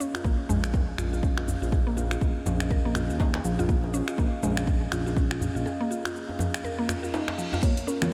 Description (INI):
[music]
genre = afro house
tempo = 122 BPM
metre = 4/4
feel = swing 59% on 16ths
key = unclear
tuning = A4 = 439 Hz
[part]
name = dark analog pad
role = sustained chords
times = 0.0-8.1 s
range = Bb3 to F5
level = -38 LUFS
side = equal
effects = subtle chorus, sidechain pumping
[part]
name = mallet-like synth pluck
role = arpeggios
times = 0.0-8.1 s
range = F3 to Bb4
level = -34 LUFS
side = equal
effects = chorus, sidechain pumping, tape echo
[part]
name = house drum kit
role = drums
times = 0.0-8.1 s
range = crash cymbal, finger snaps, hi-hat, shaker, toms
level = -37 LUFS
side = equal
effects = none
[part]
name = djembe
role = percussion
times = 0.1-8.1 s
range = none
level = -38 LUFS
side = equal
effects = none
[part]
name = smooth synth bass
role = bass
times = 0.2-5.7 s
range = Bb1 to Eb2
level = -32 LUFS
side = equal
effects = sidechain pumping
[part]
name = electronic kick drum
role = drums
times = 0.2-7.7 s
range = none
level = -27 LUFS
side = equal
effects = none
[part]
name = reverse cymbal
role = sound effects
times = 6.8-7.6 s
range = none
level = -42 LUFS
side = equal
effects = none
[part]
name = kalimba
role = melody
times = 7.6-8.1 s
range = Bb4 to Db5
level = -36 LUFS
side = equal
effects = tape echo
[part]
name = congas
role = percussion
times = 7.6-8.1 s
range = none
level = -32 LUFS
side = equal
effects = none
[sound]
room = moderate huge ambient reverb, RT60 4.7 s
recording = dreamy mix soaked in reverb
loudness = -27 LUFS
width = mono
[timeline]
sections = 0.0-8.1 A section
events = break 5.7-7.6; reverse cymbal 6.8-7.6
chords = 0.0 Dbadd9/Bb; 7.6 Bbm